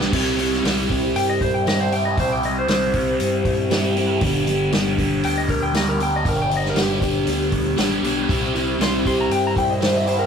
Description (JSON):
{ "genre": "psychedelic rock", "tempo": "118 BPM", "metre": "4/4", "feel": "straight", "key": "C major", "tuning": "A4 = 439 Hz", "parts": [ { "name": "electric slide guitar", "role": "melody", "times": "0.0-10.3 s", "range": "G4 to C6", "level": "-24 LUFS", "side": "left 1 dB", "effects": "none" }, { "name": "crunchy overdriven guitar", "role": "riff", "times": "0.0-10.3 s", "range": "G2 to G4", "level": "-21 LUFS", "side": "equal", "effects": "phaser" }, { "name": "overdriven fingered electric bass", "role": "bass", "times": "0.0-10.3 s", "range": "G1 to G2", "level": "-27 LUFS", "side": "equal", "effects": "none" }, { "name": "vintage drum kit", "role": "drums", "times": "0.0-10.2 s", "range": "crash cymbal, hi-hat, kick drum, snare drum", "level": "-24 LUFS", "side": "equal", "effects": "none" }, { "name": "string machine, violas", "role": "sustained chords", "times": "8.3-10.3 s", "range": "E4 to E5", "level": "-30 LUFS", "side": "right 1 dB", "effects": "ensemble chorus" } ], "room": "moderate booth ambience, RT60 0.2 s", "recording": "rough rehearsal-room recording, warm saturation", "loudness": "-18 LUFS", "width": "side -7 dB against mid", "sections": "0.0-10.3 A section", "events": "electric slide guitar solo 0.0-10.3", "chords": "0.1 C; 4.2 G; 8.3 C" }